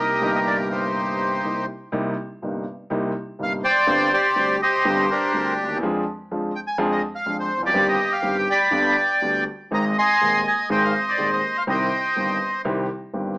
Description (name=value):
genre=tango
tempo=123 BPM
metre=4/4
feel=rubato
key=C minor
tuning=A4 = 440 Hz
part: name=bandoneon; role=melody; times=0.0-12.6 s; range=D4 to C6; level=-19 LUFS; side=equal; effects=none
part: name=warm grand piano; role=accompaniment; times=0.0-13.3 s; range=Eb1 to Ab4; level=-25 LUFS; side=equal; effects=none
room=moderate club reverb, RT60 0.7 s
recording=small speaker sound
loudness=-19 LUFS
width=side -22 dB against mid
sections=0.0-1.9 A section; 1.9-13.4 B section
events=none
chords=0.0 Cm7; 3.9 Gsus4; 5.8 Ddim/F; 7.7 Cm/G; 8.7 G; 9.7 Ab; 11.7 Cm